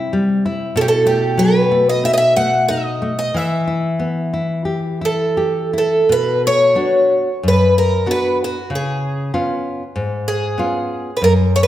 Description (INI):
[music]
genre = fado-style ballad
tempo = 83-98 BPM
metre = 4/4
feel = rubato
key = E harmonic minor, B harmonic minor from 6.1 s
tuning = A4 = 440 Hz
[part]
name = picked twelve-string acoustic guitar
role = melody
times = 0.0-11.7 s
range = F#4 to F#5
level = -16 LUFS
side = equal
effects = none
[part]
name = nylon-string guitar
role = accompaniment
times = 0.0-11.7 s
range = F#2 to G4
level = -18 LUFS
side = left 1 dB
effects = none
[sound]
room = wet recital hall reverb, RT60 1.4 s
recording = none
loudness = -14 LUFS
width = side -13 dB against mid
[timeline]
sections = 0.0-6.1 A section; 6.1-11.7 B section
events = none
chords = 0.0 C; 0.7 B7; 3.3 Em; 6.1 Bm; 8.7 C#7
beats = 0.12 | 0.75 1.39 2.04 2.68 | 3.34 4.00 4.67 5.37 | 6.07 6.75 7.41 8.04 | 8.68 9.31 9.93 10.56 | 11.21